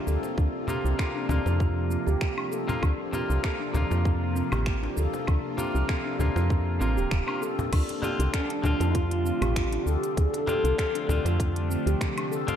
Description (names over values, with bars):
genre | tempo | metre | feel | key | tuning
organic downtempo | 98 BPM | 4/4 | swing 54% on 16ths | D minor | A4 = 440 Hz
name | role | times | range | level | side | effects
clean electric guitar | accompaniment | 0.0-12.6 s | C3 to F4 | -34 LUFS | left 2 dB | sidechain pumping, ping-pong delay
bowed-like drone | sustained chords | 0.0-12.6 s | C3 to F4 | -35 LUFS | equal | built-in reverb, phaser, sidechain pumping
handpan | arpeggios | 0.1-12.6 s | C4 to A4 | -31 LUFS | equal | ping-pong delay
woody FM bass | bass | 0.1-12.0 s | D1 to F2 | -26 LUFS | equal | sidechain pumping
organic electronic drum kit | drums | 0.1-12.6 s | crash cymbal, finger snaps, hi-hat, shaker, woodblock | -36 LUFS | equal | none
cajon | percussion | 0.2-12.6 s | none | -35 LUFS | left 2 dB | none
electronic kick drum | drums | 0.4-12.1 s | none | -27 LUFS | equal | none
mellow bass bansuri | melody | 8.3-11.4 s | D4 to A4 | -30 LUFS | left 1 dB | tape echo
room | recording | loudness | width
moderate lush hall reverb, RT60 1.8 s, digital ambience | dark, warm production | -24 LUFS | side -9 dB against mid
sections
0.0-7.7 A section; 7.7-12.6 B section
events
none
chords
0.0 Bbsus2; 7.7 Dm7